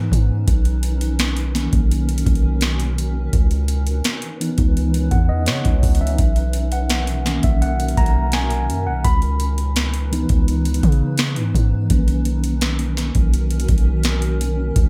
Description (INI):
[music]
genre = contemporary R&B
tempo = 84 BPM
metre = 4/4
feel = straight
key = unclear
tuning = A4 = 441 Hz
[part]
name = mellow tine electric piano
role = accompaniment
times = 0.0-14.8 s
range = D#3 to B5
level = -27 LUFS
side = equal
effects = none
[part]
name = granular cloud pad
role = sustained chords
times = 0.0-14.9 s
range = B2 to B4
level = -32 LUFS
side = equal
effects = built-in reverb
[part]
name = long sustained 808-style bass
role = bass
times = 0.0-14.9 s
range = B1 to C#3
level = -22 LUFS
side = equal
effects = none
[part]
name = booming analog drum machine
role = drums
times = 0.1-14.9 s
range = hi-hat, kick drum, snare drum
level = -21 LUFS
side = equal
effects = none
[sound]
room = light reverb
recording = none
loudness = -19 LUFS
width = mono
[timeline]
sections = 0.0-14.9 A section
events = tine electric piano solo 0.0-14.9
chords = 0.5 Bmaj9; 3.3 C#m9; 6.2 Bmaj9; 9.0 C#m9; 11.9 Bmaj9